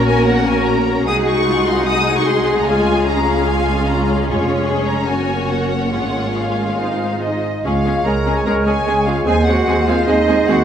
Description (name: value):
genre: classical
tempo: 148 BPM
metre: 4/4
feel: rubato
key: Db major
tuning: A4 = 440 Hz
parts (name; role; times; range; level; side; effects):
- warm symphonic violin section; melody; 0.0-10.6 s; Db5 to Eb6; -23 LUFS; left 3 dB; none
- clear symphonic violin section; second line; 0.0-10.6 s; F#4 to Gb5; -26 LUFS; left 2 dB; none
- rich symphonic viola section; accompaniment; 0.0-10.6 s; Ab3 to Eb4; -21 LUFS; right 1 dB; none
- mellow French horn section; sustained chords; 0.0-10.2 s; Ab3 to F#4; -22 LUFS; left 4 dB; none
- rich symphonic cello section; bass; 0.0-10.6 s; Db2 to A#4; -23 LUFS; right 2 dB; none
- rich symphonic double bass section; bass; 0.0-10.6 s; F1 to Eb2; -22 LUFS; right 2 dB; none
- small flute group; second line; 7.2-10.6 s; Eb5 to Bb5; -23 LUFS; right 5 dB; none
- warm clarinet; second line; 7.2-10.6 s; Eb4 to Bb4; -22 LUFS; equal; none
- clear oboe; second line; 7.7-10.6 s; C5 to Db5; -25 LUFS; right 2 dB; none
- dark bassoon; accompaniment; 7.7-10.6 s; Ab3; -22 LUFS; right 2 dB; none
room: moderate scoring stage reverb, RT60 1.6 s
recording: none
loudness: -14 LUFS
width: side -8 dB against mid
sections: 0.0-7.7 A section; 7.7-10.6 B section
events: none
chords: 0.0 F#/A#; 1.1 Ab7/C; 2.7 Db; 4.3 Db/F; 5.1 Gb; 5.9 Db/Ab; 6.8 Ab; 7.7 Db; 9.3 Ab7/Eb